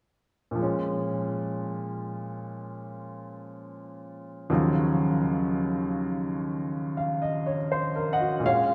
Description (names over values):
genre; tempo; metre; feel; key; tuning
solo jazz; 61 BPM; 4/4; swing 66% on 8ths; Bb minor; A4 = 437 Hz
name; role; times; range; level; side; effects
warm upright piano; solo; 0.5-8.7 s; Eb2 to Gb5; -28 LUFS; equal; none
room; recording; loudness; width
wet church reverb, RT60 3.8 s; recorded in a church or concert hall; -28 LUFS; mono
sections
0.6-8.4 A section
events
none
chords
0.6 Bbm7; 4.5 Ebm9